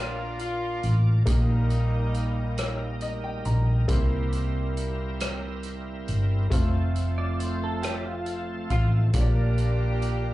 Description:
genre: slow gospel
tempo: 46 BPM (dotted quarters)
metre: 6/8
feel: straight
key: Bb major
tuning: A4 = 440 Hz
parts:
  - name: clear saxophone section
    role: melody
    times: 0.0-3.0, 8.7-10.3 s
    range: G3 to G4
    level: -33 LUFS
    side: equal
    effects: slapback echo
  - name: bright upright piano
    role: accompaniment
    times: 0.0-10.3 s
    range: Bb2 to Bb5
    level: -35 LUFS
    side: left 1 dB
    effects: slapback echo
  - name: bright tonewheel organ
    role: sustained chords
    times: 0.0-10.3 s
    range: F3 to D5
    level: -35 LUFS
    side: right 2 dB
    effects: slow rotary speaker, overdrive, chorus vibrato
  - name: hollow-body short-scale fingered electric bass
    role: bass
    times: 0.0-10.3 s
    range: F1 to C2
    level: -25 LUFS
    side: equal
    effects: none
  - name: swinging big-band drum kit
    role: drums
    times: 0.4-10.2 s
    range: hi-hat, kick drum, rim click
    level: -29 LUFS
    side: equal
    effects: none
  - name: clean electric guitar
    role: second line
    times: 7.2-9.1 s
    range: F4 to D5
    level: -35 LUFS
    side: right 2 dB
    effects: analog chorus, slapback echo
room: little or no reverb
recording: live gig heard through the venue's PA, club reverb, nothing above 11.0 kHz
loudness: -23 LUFS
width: side -16 dB against mid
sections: 0.0-10.3 A section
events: upright piano fill 2.6-3.9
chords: 0.0 Bb; 1.3 Eb/Bb; 3.9 C7; 6.5 F; 9.1 Bb

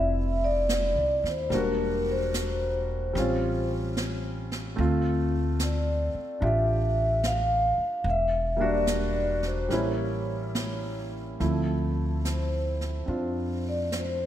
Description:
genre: jazz ballad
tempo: 73 BPM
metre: 4/4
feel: swing 66% on 8ths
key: D minor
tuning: A4 = 441 Hz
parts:
  - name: vibraphone with soft mallets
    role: melody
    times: 0.0-14.3 s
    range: Bb4 to F5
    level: -28 LUFS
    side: equal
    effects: ping-pong delay
  - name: warm concert grand piano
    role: accompaniment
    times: 0.0-14.3 s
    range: F3 to G4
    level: -31 LUFS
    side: equal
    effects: none
  - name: upright bass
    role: bass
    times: 0.0-14.3 s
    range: E1 to F2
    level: -29 LUFS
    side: equal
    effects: none
  - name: jazz brush drum kit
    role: drums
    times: 0.7-14.3 s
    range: brushed snare drum, hi-hat, snare drum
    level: -36 LUFS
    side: right 1 dB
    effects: none
room: moderate lush hall reverb, RT60 1.8 s, small room reverb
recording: dreamy mix soaked in reverb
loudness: -25 LUFS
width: side -11 dB against mid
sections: 0.0-11.4 A section; 11.4-14.3 B section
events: vibraphone solo 11.4-14.3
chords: 0.0 Bbmaj9 (rootless); 1.5 Em7b5; 3.2 A7alt; 4.8 Dm9; 8.1 Em7b5; 9.7 A7b9; 11.4 Dm9

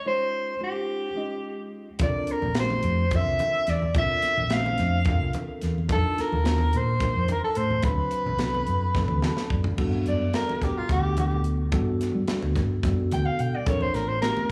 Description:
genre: electric jazz fusion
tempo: 216 BPM (eighths)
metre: 7/8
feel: straight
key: G major from 9.8 s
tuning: A4 = 440 Hz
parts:
  - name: warm soprano saxophone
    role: melody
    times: 0.0-14.5 s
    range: F4 to G5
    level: -30 LUFS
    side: equal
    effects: slapback echo, tape echo
  - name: tine electric piano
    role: accompaniment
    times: 0.1-14.5 s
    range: F#3 to A5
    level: -34 LUFS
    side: equal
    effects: phaser, slapback echo
  - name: hollow-body short-scale fingered electric bass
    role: bass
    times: 2.0-14.2 s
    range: A1 to G3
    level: -29 LUFS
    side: equal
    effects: none
  - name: tight funk drum kit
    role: drums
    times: 2.0-14.5 s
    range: crash cymbal, hi-hat, kick drum, snare drum, toms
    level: -31 LUFS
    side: equal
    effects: none
  - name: congas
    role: percussion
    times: 2.0-14.5 s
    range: none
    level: -37 LUFS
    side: equal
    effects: slapback echo
room: light reverb, studio reverb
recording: live gig heard through the venue's PA, club reverb, small room ambience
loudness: -25 LUFS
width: mono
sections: 0.0-9.8 A section; 9.8-14.5 B section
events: drum fill 9.0-9.8; tine electric piano fill 9.0-9.8; soprano saxophone solo 9.8-14.5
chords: 0.0 Eb13sus4; 2.0 C13sus4; 5.9 F13sus4; 7.8 D13; 9.8 Gmaj9; 13.7 Bbmaj9

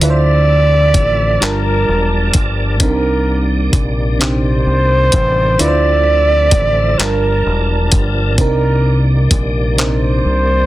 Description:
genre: slow six-eight R&B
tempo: 43 BPM (dotted quarters)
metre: 6/8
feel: straight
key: C dorian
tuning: A4 = 440 Hz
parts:
  - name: breathy flugelhorn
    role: melody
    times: 0.0-10.7 s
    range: Bb4 to D5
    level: -16 LUFS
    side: right 1 dB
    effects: none
  - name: FM electric piano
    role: accompaniment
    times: 0.0-10.7 s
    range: C3 to A5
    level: -19 LUFS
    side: right 2 dB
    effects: chorus, phaser
  - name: tonewheel organ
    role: sustained chords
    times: 0.0-10.7 s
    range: C3 to A5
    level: -23 LUFS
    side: equal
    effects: chorus vibrato, slow rotary speaker
  - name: deep dub fingered electric bass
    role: bass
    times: 0.0-10.7 s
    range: E1 to D2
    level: -15 LUFS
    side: equal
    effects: none
  - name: dusty soul sampler-style drum kit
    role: drums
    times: 0.0-10.0 s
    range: handclaps, hi-hat, kick drum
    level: -14 LUFS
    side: equal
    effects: none
room: light reverb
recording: dense, heavily limited modern master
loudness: -11 LUFS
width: side -16 dB against mid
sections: 0.0-10.7 A section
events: none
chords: 0.0 Dm9; 1.4 Gm9; 2.8 Cm9; 5.6 Dm9; 7.0 Gm9; 8.4 Cm9

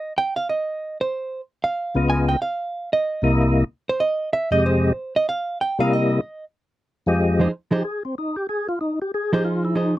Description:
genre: jazz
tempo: 188 BPM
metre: 4/4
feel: swing 64% on 8ths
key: F minor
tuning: A4 = 440 Hz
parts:
  - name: hollow-body jazz guitar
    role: accompaniment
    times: 0.0-9.9 s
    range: F3 to Ab5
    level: -22 LUFS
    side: right 2 dB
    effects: none
  - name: percussive tonewheel organ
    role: melody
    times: 1.9-10.0 s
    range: C2 to Eb5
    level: -19 LUFS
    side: left 1 dB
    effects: slow rotary speaker, overdrive, chorus vibrato
room: light reverb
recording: dry, close 1970s-style studio recording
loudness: -20 LUFS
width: side -15 dB against mid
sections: 0.0-7.2 A section; 7.2-10.0 A section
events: hollow-body jazz guitar solo 0.0-7.2; tonewheel organ solo 7.2-10.0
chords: 0.0 F7(no3); 2.1 Db7; 3.3 C7#9; 4.6 Fm7; 5.3 Bbsus2; 5.9 C7#9; 7.2 Fm7

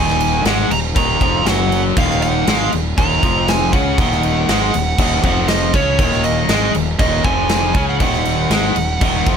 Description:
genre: quiet-loud alternative rock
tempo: 119 BPM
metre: 4/4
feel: straight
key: Eb minor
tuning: A4 = 441 Hz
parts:
  - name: fuzz lead guitar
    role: melody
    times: 0.0-9.4 s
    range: Db5 to Bb5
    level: -20 LUFS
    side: right 4 dB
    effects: distortion, slapback echo
  - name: distorted electric guitar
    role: riff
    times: 0.0-9.4 s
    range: Eb2 to Db4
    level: -21 LUFS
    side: left 16 dB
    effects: overdrive
  - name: overdriven semi-hollow guitar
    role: riff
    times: 0.0-9.4 s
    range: Eb2 to Db4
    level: -22 LUFS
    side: right 14 dB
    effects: none
  - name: fuzz fingered electric bass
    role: bass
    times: 0.0-9.4 s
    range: Eb1 to Db2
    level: -21 LUFS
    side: equal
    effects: overdrive
  - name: big rock drum kit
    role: drums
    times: 0.1-9.4 s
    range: crash cymbal, kick drum, snare drum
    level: -19 LUFS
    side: equal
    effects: none
room: little or no reverb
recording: none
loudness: -13 LUFS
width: side -7 dB against mid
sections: 0.0-9.4 A section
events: none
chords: 0.0 Ebm

